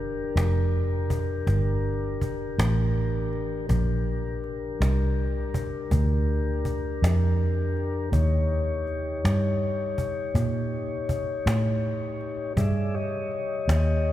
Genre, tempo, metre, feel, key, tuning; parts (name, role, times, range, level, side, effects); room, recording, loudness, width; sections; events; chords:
slow blues; 54 BPM (dotted quarters); 12/8; straight; G minor; A4 = 443 Hz
mellow tonewheel organ; sustained chords; 0.0-14.1 s; D4 to E5; -30 LUFS; left 4 dB; slow rotary speaker
vintage muted fingered electric bass; bass; 0.0-14.1 s; F1 to Bb2; -25 LUFS; right 1 dB
cajon; drums; 0.4-13.9 s; -34 LUFS; equal
moderate cathedral reverb, RT60 4.7 s; recorded in a church or concert hall; -24 LUFS; side -13 dB against mid
0.0-14.1 A section
0.0 Gm; 8.1 Eb7